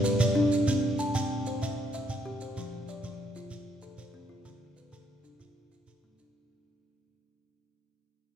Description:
southern african traditional, mbira-style interlocking cycle; 127 BPM (dotted quarters); 12/8; straight; A4 = 440 Hz
buzzing kalimba; arpeggios; 0.0-6.5 s; D3 to A5; -29 LUFS; equal
shekere; percussion; 0.0-6.3 s; -30 LUFS; right 1 dB
wet church reverb, RT60 2.9 s; recorded in a church or concert hall; -27 LUFS; side -8 dB against mid
0.0-6.3 A section
fade-out 0.0-6.3
0.0 G (rootless); 0.7 C; 2.6 F; 4.5 Dm
0.20 | 0.68 1.15 1.62 2.09 | 2.57 3.04 3.51 3.98 | 4.46 4.93 5.40 5.88

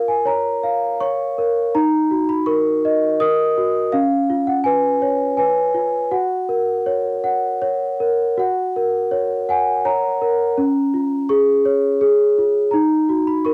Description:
children's music; 82 BPM; 3/4; rubato; F# major; A4 = 440 Hz
large celesta; solo; 0.0-13.5 s; C#4 to D#6; -18 LUFS; equal
light reverb; home recording on cassette; -19 LUFS; mono
0.0-8.4 A section; 8.4-13.5 A section
0.0 A#m; 1.7 D#m; 3.9 C#7; 6.1 F#; 10.6 C#; 12.7 D#m
0.26 1.01 | 1.74 2.48 3.21 | 3.94 4.66 5.39 | 6.12 6.87 7.63 | 8.39 9.13 9.85 | 10.57 11.29 12.01 | 12.73 13.45

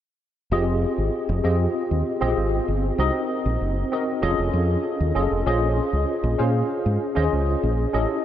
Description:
polished 1980s jazz-funk pop; 97 BPM; 4/4; straight; F minor; A4 = 441 Hz
tine electric piano; accompaniment; 0.5-8.2 s; C4 to F5; -23 LUFS; left 1 dB; overdrive, fast stereo tremolo, analog chorus
fingered electric bass; bass; 0.5-8.1 s; F1 to Bb2; -23 LUFS; equal
moderate huge ambient reverb, RT60 5.0 s; dreamy mix soaked in reverb; -20 LUFS; side -11 dB against mid
0.5-8.2 A section
0.5 Fm7; 3.0 Cm7b5; 4.2 F7alt; 5.5 Bbm11
| 0.51 1.13 1.75 2.37 | 2.99 3.61 4.23 4.84 | 5.46 6.08 6.70 7.32 | 7.94

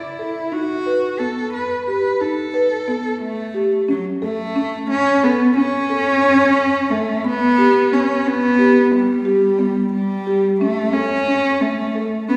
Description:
contemporary instrumental, contemporary; 179 BPM (eighths); 5/8; straight; A4 = 440 Hz
dark cello; melody; 0.0-12.4 s; F#3 to B4; -20 LUFS; equal
buzzing marimba with soft mallets; arpeggios; 0.0-12.4 s; B3 to B4; -22 LUFS; equal
wet scoring stage reverb, RT60 2.1 s; recorded in a church or concert hall, small room ambience; -18 LUFS; mono
0.0-3.9 A section; 3.9-12.4 B section
0.0 N.C.; 0.5 B7; 3.9 F#m (rootless); 7.2 G; 10.6 A
0.19 | 0.53 0.86 1.20 1.53 1.87 | 2.21 2.54 2.88 3.21 3.55 | 3.89 4.22 4.56 4.89 5.23 | 5.57 5.90 6.24 6.57 6.91 | 7.24 7.58 7.92 8.25 8.59 | 8.92 9.26 9.60 9.93 10.27 | 10.60 10.94 11.28 11.61 11.95 | 12.29

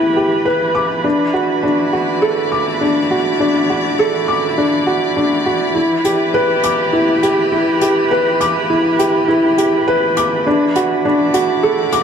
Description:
piano and strings electronica; 102 BPM; 4/4; straight; E minor; A4 = 439 Hz
rich string quartet; sustained chords; 0.0-12.0 s; E3 to D5; -19 LUFS; right 1 dB
felt-muted upright piano; riff; 0.0-12.0 s; D4 to D6; -14 LUFS; equal; tape echo
hi-hat; drums; 6.0-12.0 s; -27 LUFS; left 5 dB
wet recital hall reverb, RT60 1.5 s, studio ambience; -13 LUFS; side -7 dB against mid
0.0-5.8 A section; 5.8-12.0 B section
build-up 5.8-12.0
0.0 Em; 1.0 D/E; 5.8 Em; 10.5 D/E
0.46 | 1.05 1.64 2.23 2.81 | 3.40 3.99 4.58 5.17 | 5.75 6.34 6.93 7.52 | 8.11 8.70 9.28 9.87 | 10.46 11.05 11.64

